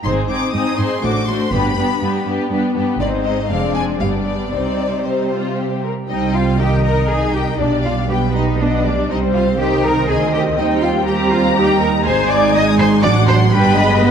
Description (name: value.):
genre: quick classical-period movement for string orchestra.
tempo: 121 BPM.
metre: 3/4.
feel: rubato.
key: C minor.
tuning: A4 = 440 Hz.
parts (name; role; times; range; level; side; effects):
rich chamber violin section; melody; 0.0-14.1 s; C5 to Eb6; -24 LUFS; left 5 dB; none.
rich symphonic violin section; second line; 0.0-14.1 s; D4 to Bb5; -22 LUFS; left 3 dB; none.
rich symphonic viola section; accompaniment; 0.0-14.1 s; Eb3 to Eb4; -19 LUFS; right 1 dB; none.
clear studio double bass section; bass; 0.0-14.1 s; F1 to Eb2; -19 LUFS; right 2 dB; none.
rich symphonic cello section; bass; 0.0-14.1 s; F2 to Eb5; -21 LUFS; right 1 dB; none.
room: moderate concert hall reverb, RT60 1.8 s.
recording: dark, warm production.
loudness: -14 LUFS.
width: side -7 dB against mid.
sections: 0.0-6.1 A section; 6.1-14.1 B section.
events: none.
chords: 0.0 Ab; 1.0 D7/A; 1.5 G; 3.0 Ab; 3.5 Dm7b5/F; 4.0 G; 4.5 Cm; 7.6 G/B; 9.1 Cm; 10.6 Cm/Eb; 12.1 Ab; 13.0 D7/A; 13.5 G.